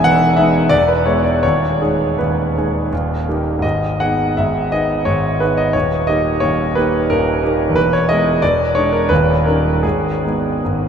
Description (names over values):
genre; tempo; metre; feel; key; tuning
classical, romantic character piece for solo piano; 73-93 BPM; 3/4; rubato; G# minor; A4 = 439 Hz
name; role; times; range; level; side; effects
clear concert grand piano; solo; 0.0-10.9 s; D#1 to G#5; -14 LUFS; equal; none
room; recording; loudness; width
wet huge ambient reverb, RT60 7.9 s; in a vast, echoing space; -14 LUFS; side -7 dB against mid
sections
0.0-10.9 A section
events
none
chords
0.0 Emaj7; 0.7 E; 1.4 G#m/D#; 2.9 D#; 3.6 G#m; 5.7 D#; 7.8 Emaj7; 8.4 E7; 9.1 D#7; 9.8 G#m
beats
0.05 0.71 | 1.43 2.19 2.92 | 3.63 4.37 5.06 | 5.74 6.42 7.10 | 7.76 8.42 9.10 | 9.84 10.64